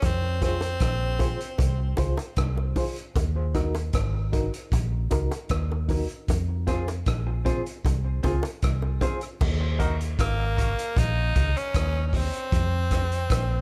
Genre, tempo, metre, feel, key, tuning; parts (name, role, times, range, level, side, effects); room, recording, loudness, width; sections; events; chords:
dub reggae; 77 BPM; 4/4; straight; Eb dorian; A4 = 440 Hz
raspy tenor saxophone; melody; 0.0-2.0, 10.2-13.6 s; Bb3 to Eb4; -32 LUFS; equal; tape echo
vintage muted fingered electric bass; bass; 0.0-13.6 s; Ab1 to F2; -28 LUFS; equal
vintage drum kit; drums; 0.0-13.5 s; crash cymbal, hi-hat, kick drum, rim click; -30 LUFS; equal
bongos; percussion; 0.0-9.6 s; -39 LUFS; equal; high-pass filter on perc, tape echo
reed electric piano; stabs; 0.4-13.1 s; Eb4 to C5; -37 LUFS; equal; fast tremolo, high-pass filter, tape echo
clean electric guitar; accompaniment; 6.7-13.5 s; Ab3 to Ab4; -38 LUFS; equal; high-pass filter, tape echo
mellow tonewheel organ; accompaniment; 9.6-13.6 s; barely audible
small room ambience; -26 LUFS; mono
0.0-9.4 A section; 9.4-13.6 B section
break 0.0-6.3; filter sweep 6.3-13.6; part muted 9.4-13.6
0.0 Fm; 3.2 Ebm; 6.3 Fm; 9.4 Ebm; 12.5 Fm